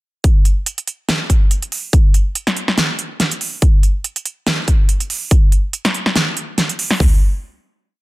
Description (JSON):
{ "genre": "future bass", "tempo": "142 BPM", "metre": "4/4", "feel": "swing 55% on 16ths, half-time", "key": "none", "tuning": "none", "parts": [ { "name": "big-room dance drum kit", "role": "drums", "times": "0.2-7.1 s", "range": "hi-hat, kick drum, toms", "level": "-12 LUFS", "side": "equal", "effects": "none" }, { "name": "big-room dance drum kit", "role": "drums", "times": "0.2-7.0 s", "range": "hi-hat, snare drum", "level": "-18 LUFS", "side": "right 1 dB", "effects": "none" } ], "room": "little or no reverb", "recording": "dense, heavily limited modern master", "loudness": "-14 LUFS", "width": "side -20 dB against mid", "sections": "0.2-7.0 drop; 7.0-8.0 final hit", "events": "drop 0.2-7.0", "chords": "none" }